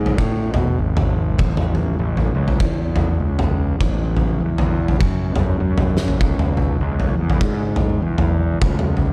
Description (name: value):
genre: stoner and doom metal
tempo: 100 BPM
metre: 4/4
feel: swing 58% on 8ths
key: unclear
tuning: A4 = 443 Hz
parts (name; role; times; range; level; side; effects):
- fuzz fingered electric bass; bass; 0.0-9.1 s; G#1 to B2; -23 LUFS; equal; overdrive, tube saturation
- oversized low-tuned drum kit; drums; 0.1-9.1 s; kick drum, snare drum, toms; -21 LUFS; equal; none
room: little or no reverb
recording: dark, warm production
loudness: -19 LUFS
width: mono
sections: 0.0-9.1 A section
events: drum fill 5.9-6.2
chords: none